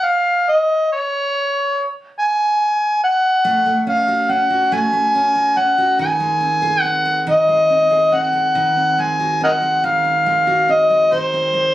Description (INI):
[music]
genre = folk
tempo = 47 BPM (dotted quarters)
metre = 6/8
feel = straight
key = unclear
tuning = A4 = 445 Hz
[part]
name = overdriven harmonica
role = melody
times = 0.0-11.7 s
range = Bb4 to Ab5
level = -14 LUFS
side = equal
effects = none
[part]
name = picked steel-string acoustic guitar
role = arpeggios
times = 3.4-11.7 s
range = Eb3 to Ab4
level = -24 LUFS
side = right 3 dB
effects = none
[sound]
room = light reverb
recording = recorded on a phone in the room, studio reverb, compression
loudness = -14 LUFS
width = side -14 dB against mid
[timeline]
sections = 0.0-8.6 A section; 8.6-11.7 B section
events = none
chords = 0.0 N.C.; 3.4 Gbm; 6.0 Ab; 8.6 Ab7